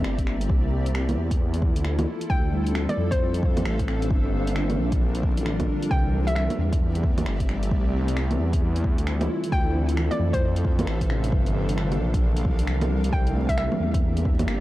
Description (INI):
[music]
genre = future garage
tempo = 133 BPM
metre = 4/4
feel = swing 62% on 16ths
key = unclear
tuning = A4 = 440 Hz
[part]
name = tine electric piano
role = accompaniment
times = 0.0-14.6 s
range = C3 to F4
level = -32 LUFS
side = left 2 dB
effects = medium stereo tremolo, sidechain pumping, tape echo
[part]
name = granular cloud pad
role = sustained chords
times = 0.0-14.6 s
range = E3 to Bb5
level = -31 LUFS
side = equal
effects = built-in reverb, sidechain pumping
[part]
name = swelling detuned saw bass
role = bass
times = 0.0-14.6 s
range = G1 to F2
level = -25 LUFS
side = equal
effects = sidechain pumping
[part]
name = deep house drum kit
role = drums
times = 0.0-14.6 s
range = bongos, finger snaps, hi-hat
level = -31 LUFS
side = right 1 dB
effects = none
[part]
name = electronic kick drum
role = drums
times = 0.2-14.4 s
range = none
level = -24 LUFS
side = equal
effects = none
[part]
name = hollow square pluck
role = melody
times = 2.3-6.4, 9.5-13.7 s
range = C5 to G5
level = -32 LUFS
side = left 1 dB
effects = chorus, tape echo
[sound]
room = digital ambience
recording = dry, gritty hardware recording, vinyl crackle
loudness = -21 LUFS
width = side -16 dB against mid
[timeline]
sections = 0.0-13.1 A section; 13.1-14.6 A section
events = kick drops out 12.7-13.1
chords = 0.5 Fmaj7/C; 2.3 Dm7; 4.1 Gm7; 5.9 C7; 7.7 Fmaj7/C; 9.5 Dm7; 11.3 Gm7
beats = 0.04 | 0.49 0.95 1.40 1.85 | 2.30 2.75 3.20 3.65 | 4.10 4.55 5.01 5.46 | 5.91 6.36 6.81 7.26 | 7.71 8.16 8.62 9.07 | 9.52 9.97 10.42 10.87 | 11.32 11.77 12.22 12.68 | 13.13 13.58 14.03 14.48